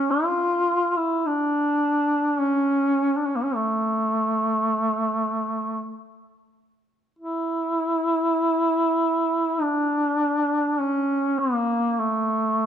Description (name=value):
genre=caucasian folk, Caucasian lament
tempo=47-53 BPM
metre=3/4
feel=rubato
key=unclear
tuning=A4 = 441 Hz
part: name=warm duduk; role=solo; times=0.0-12.7 s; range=A3 to F4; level=-21 LUFS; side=equal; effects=none
room=moderate scoring stage reverb, RT60 1.7 s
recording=dark, warm production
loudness=-21 LUFS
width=side -9 dB against mid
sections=0.0-7.2 A section; 7.2-12.7 B section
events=none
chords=none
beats=| 0.10 1.25 2.38 | 3.53 4.73 5.97 | 7.20 8.40 9.61 | 10.81 11.99